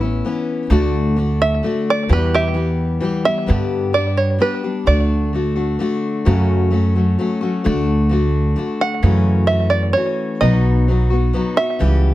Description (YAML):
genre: acoustic folk duo or small band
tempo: 130 BPM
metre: 3/4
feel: straight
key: unclear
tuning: A4 = 435 Hz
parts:
  - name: open-back banjo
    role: melody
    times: 0.0-6.0, 8.8-12.1 s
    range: E4 to F#5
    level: -19 LUFS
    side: right 2 dB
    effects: slapback echo
  - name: picked steel-string acoustic guitar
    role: accompaniment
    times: 0.0-12.1 s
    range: E2 to G4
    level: -20 LUFS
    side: left 3 dB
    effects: none
  - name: upright bass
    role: bass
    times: 0.0-12.1 s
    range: A1 to G2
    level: -17 LUFS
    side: right 1 dB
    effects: none
room: light reverb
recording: close, detailed microphones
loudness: -15 LUFS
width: side -15 dB against mid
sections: 0.0-3.5 A section; 3.5-12.1 B section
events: five-string banjo solo 0.0-3.5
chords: 0.0 Aadd9; 0.7 D; 2.1 Em; 3.5 G; 4.9 D; 6.3 F#m; 7.6 D; 9.0 F#m7; 10.4 B